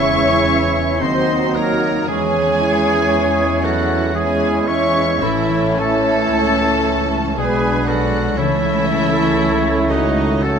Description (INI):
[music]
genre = classical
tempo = 52-61 BPM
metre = 3/4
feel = rubato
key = C# minor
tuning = A4 = 440 Hz
[part]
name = muted studio violin section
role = melody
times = 0.0-10.6 s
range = D#5 to C#6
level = -25 LUFS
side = left 2 dB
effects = none
[part]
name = clear clarinet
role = second line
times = 0.0-10.6 s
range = D#4 to C#5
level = -26 LUFS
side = left 2 dB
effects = none
[part]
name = clear oboe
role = second line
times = 0.0-10.6 s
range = D#4 to C#5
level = -26 LUFS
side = right 2 dB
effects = none
[part]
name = concert flute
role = second line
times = 0.0-10.6 s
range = F#4 to E5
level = -25 LUFS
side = left 1 dB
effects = none
[part]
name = muted symphonic violin section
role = second line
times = 0.0-10.6 s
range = D#4 to C#5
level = -25 LUFS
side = left 2 dB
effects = none
[part]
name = mellow bassoon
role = accompaniment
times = 0.0-10.6 s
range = C#4 to F#4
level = -24 LUFS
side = right 2 dB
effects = none
[part]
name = muted studio viola section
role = accompaniment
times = 0.0-10.6 s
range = E3 to E4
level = -26 LUFS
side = right 1 dB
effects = none
[part]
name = dark French horn section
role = sustained chords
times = 0.0-10.6 s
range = G#3 to A4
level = -25 LUFS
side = left 6 dB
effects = none
[part]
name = warm trombone section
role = sustained chords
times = 0.0-10.6 s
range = B2 to B3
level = -27 LUFS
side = right 5 dB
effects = none
[part]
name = concert harp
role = arpeggios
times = 0.0-10.6 s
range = A2 to C#6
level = -28 LUFS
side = left 10 dB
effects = none
[part]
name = dark trumpet section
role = stabs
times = 0.0-10.6 s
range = B4 to E5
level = -26 LUFS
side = right 3 dB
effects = none
[part]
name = muted studio cello section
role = bass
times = 0.0-10.6 s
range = D#3 to C#4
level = -25 LUFS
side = right 4 dB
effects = none
[part]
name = muted studio double bass section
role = bass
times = 0.0-10.6 s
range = A1 to E2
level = -24 LUFS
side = right 3 dB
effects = none
[sound]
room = moderate scoring stage reverb, RT60 1.7 s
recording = none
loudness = -14 LUFS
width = side -7 dB against mid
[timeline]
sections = 0.0-10.6 A section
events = none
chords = 0.0 C#m; 1.0 Cdim/Eb; 2.1 C#m/E; 5.2 A; 7.4 G#dim/B; 8.4 A/C#